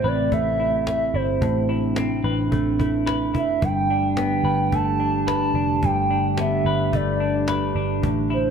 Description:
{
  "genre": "dream pop",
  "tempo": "109 BPM",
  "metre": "4/4",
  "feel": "straight",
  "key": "G major",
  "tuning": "A4 = 439 Hz",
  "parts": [
    { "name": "hollow clarinet-like synth lead", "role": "melody", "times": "0.0-8.5 s", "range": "C5 to A5", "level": "-24 LUFS", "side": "right 3 dB", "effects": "chorus, ping-pong delay" },
    { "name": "warbly tape-like pad", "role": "sustained chords", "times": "0.0-8.5 s", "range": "C3 to G4", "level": "-25 LUFS", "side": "right 2 dB", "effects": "chorus, built-in reverb" },
    { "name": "semi-hollow electric guitar", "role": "arpeggios", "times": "0.0-8.5 s", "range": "G2 to B4", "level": "-26 LUFS", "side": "left 5 dB", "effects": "lush chorus, ping-pong delay" },
    { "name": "vintage muted picked electric bass", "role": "bass", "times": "0.0-8.5 s", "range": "F1 to A1", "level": "-26 LUFS", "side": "equal", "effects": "none" },
    { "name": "cajon", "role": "drums", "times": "0.3-8.2 s", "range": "none", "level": "-27 LUFS", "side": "equal", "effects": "none" }
  ],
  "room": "moderate plate reverb, RT60 2.2 s",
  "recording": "none",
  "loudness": "-19 LUFS",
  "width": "side -7 dB against mid",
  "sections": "0.0-8.5 A section",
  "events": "none",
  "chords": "0.0 Amadd9; 3.6 Gadd9"
}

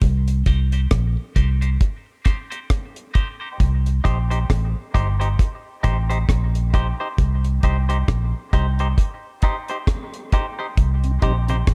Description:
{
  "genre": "dub reggae",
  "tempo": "67 BPM",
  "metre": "4/4",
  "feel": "swing 58% on 16ths",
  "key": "C dorian",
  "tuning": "A4 = 441 Hz",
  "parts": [
    { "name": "vintage muted fingered electric bass", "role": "bass", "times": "0.0-11.7 s", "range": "G1 to C2", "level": "-22 LUFS", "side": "equal", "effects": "none" },
    { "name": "deep reggae drum kit", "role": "drums", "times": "0.0-11.7 s", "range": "hi-hat, kick drum, rim click", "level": "-21 LUFS", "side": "equal", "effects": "none" },
    { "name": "mellow tonewheel organ", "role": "accompaniment", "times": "0.3-3.5, 11.0-11.6 s", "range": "C3 to Eb4", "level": "-33 LUFS", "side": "equal", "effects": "slow rotary speaker, high-pass filter" },
    { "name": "clean electric guitar", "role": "accompaniment", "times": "0.5-11.6 s", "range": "Eb4 to C5", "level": "-31 LUFS", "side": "equal", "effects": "spring reverb, high-pass filter, dub echo" }
  ],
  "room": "small room ambience",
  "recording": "dark, warm production",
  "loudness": "-21 LUFS",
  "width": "mono",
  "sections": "0.0-11.7 A section",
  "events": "filter sweep 0.0-3.6",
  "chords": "0.0 Cm"
}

